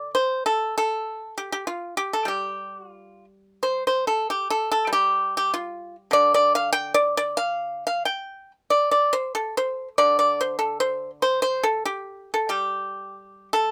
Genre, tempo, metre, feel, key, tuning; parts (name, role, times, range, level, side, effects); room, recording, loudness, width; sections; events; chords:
chinese traditional, Chinese solo plucked strings; 86-100 BPM; 2/4; rubato; G shang mode; A4 = 439 Hz
pipa; solo; 0.0-13.7 s; D3 to G5; -24 LUFS; equal
little or no reverb; close, detailed microphones; -24 LUFS; mono
0.0-3.6 A section; 3.6-13.7 B section